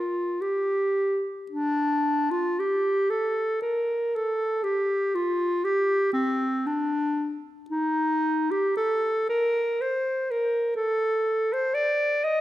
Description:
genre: classical, free, expressive piece for unaccompanied clarinet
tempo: 59 BPM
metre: 3/4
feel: uneven beats, rubato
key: unclear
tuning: A4 = 440 Hz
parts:
  - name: clear clarinet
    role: solo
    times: 0.0-12.4 s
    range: C4 to Eb5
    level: -23 LUFS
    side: equal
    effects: none
room: moderate scoring stage reverb, RT60 1.8 s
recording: none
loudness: -23 LUFS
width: side -14 dB against mid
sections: 0.0-12.4 A section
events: none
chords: none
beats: 0.42 | 1.53 2.58 3.63 | 4.64 5.63 6.65 | 7.70 8.75 9.77 | 10.76 11.74

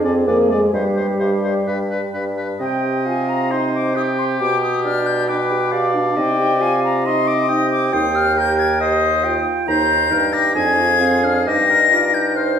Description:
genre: quick classical-period movement for wind quintet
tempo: 135 BPM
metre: 4/4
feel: rubato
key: C minor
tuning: A4 = 443 Hz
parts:
  - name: clear oboe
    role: second line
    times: 0.0-12.6 s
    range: G4 to Eb5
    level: -25 LUFS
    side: left 2 dB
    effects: none
  - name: mellow French horn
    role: accompaniment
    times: 0.0-12.6 s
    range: G3 to G4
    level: -23 LUFS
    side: right 1 dB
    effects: none
  - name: warm clarinet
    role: accompaniment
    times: 0.0-12.6 s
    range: G4 to Bb5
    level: -22 LUFS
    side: right 4 dB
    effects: none
  - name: mellow bassoon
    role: bass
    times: 0.0-12.6 s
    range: Eb2 to C3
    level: -22 LUFS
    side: right 1 dB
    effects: none
  - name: bright concert flute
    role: melody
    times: 0.1-12.6 s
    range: D5 to Bb6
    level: -20 LUFS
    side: left 6 dB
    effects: none
room: wet recital hall reverb, RT60 1.4 s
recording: heard from further back in the room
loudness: -15 LUFS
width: side -8 dB against mid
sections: 0.0-2.6 A section; 2.6-12.6 B section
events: none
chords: 0.0 Ddim/F; 0.7 C5/G; 2.6 Cm; 4.4 G/B; 6.2 Cm; 7.9 Cm/Eb; 9.7 Eb; 10.6 Ddim/F; 11.5 Eb/G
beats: 0.28 | 0.74 1.21 1.68 2.14 | 2.60 3.06 3.51 3.96 | 4.40 4.84 5.28 5.72 | 6.17 6.61 7.05 7.49 | 7.93 8.37 8.80 9.24 | 9.68 10.11 10.56 11.01 | 11.47 11.91 12.36

